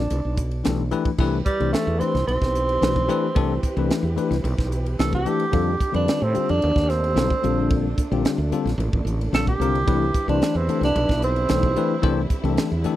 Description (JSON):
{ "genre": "electric jazz fusion", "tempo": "111 BPM", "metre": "4/4", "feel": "straight", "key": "C major", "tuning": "A4 = 440 Hz", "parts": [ { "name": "warm tenor saxophone", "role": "melody", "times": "0.0-12.3 s", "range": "G3 to A4", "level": "-24 LUFS", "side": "right 2 dB", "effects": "none" }, { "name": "woody fretless electric bass", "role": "bass", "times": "0.0-12.9 s", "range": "A1 to A2", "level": "-24 LUFS", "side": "right 1 dB", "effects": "none" }, { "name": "bell-like tine electric piano", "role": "accompaniment", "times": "0.1-13.0 s", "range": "D3 to C5", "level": "-25 LUFS", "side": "left 7 dB", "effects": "none" }, { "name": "crisp fusion drum kit", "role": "drums", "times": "0.1-13.0 s", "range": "crash cymbal, hi-hat, kick drum, ride cymbal, snare drum", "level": "-25 LUFS", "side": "right 1 dB", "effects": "none" }, { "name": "warm studio string section", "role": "sustained chords", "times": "1.2-13.0 s", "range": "D3 to B4", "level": "-32 LUFS", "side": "right 2 dB", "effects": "none" } ], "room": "small room ambience", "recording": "dry, close 1970s-style studio recording", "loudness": "-19 LUFS", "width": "side -13 dB against mid", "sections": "0.0-1.2 A section; 1.2-13.0 B section", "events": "tenor saxophone solo 1.2-13.0", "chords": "0.1 Cmaj9; 5.5 F13; 7.4 Bbmaj9; 9.9 Cmaj7", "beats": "0.12 0.66 | 1.20 1.74 2.29 2.83 | 3.37 3.91 4.46 5.00 | 5.54 6.08 6.62 7.17 | 7.71 8.25 8.79 9.33 | 9.87 10.41 10.96 11.50 | 12.04 12.58" }